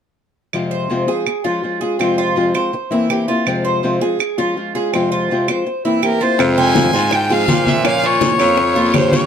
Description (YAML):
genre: latin, Cuban son and guajira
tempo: 164 BPM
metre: 4/4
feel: straight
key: F harmonic minor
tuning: A4 = 440 Hz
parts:
  - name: nylon-string guitar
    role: accompaniment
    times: 0.5-9.3 s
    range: F2 to F4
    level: -18 LUFS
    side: left 2 dB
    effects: none
  - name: claves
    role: percussion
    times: 0.5-9.1 s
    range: none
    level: -24 LUFS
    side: right 7 dB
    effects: none
  - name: Cuban tres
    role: arpeggios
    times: 0.7-9.3 s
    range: C4 to Db5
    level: -20 LUFS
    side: right 4 dB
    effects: none
  - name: clear violin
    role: melody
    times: 6.1-9.3 s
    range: Bb4 to Ab5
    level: -17 LUFS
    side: left 2 dB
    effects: plate reverb
  - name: raspy baritone saxophone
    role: bass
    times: 6.4-9.3 s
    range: F2 to Bb2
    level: -19 LUFS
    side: right 1 dB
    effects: none
  - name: bongos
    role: percussion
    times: 6.4-9.1 s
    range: none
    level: -23 LUFS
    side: left 6 dB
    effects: none
  - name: congas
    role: percussion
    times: 6.4-9.3 s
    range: none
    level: -20 LUFS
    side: left 1 dB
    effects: none
  - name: guiro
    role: percussion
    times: 6.4-9.3 s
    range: none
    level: -29 LUFS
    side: left 4 dB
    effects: none
room: moderate studio reverb, RT60 0.7 s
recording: dark, warm production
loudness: -14 LUFS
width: side -8 dB against mid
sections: 0.5-6.4 A section; 6.4-9.3 B section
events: none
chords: 0.5 Fm; 1.3 Db; 2.0 Fm; 2.7 C7; 3.5 Fm; 4.2 Db; 4.9 Fm; 5.7 C7; 6.4 Fm; 7.8 Bbm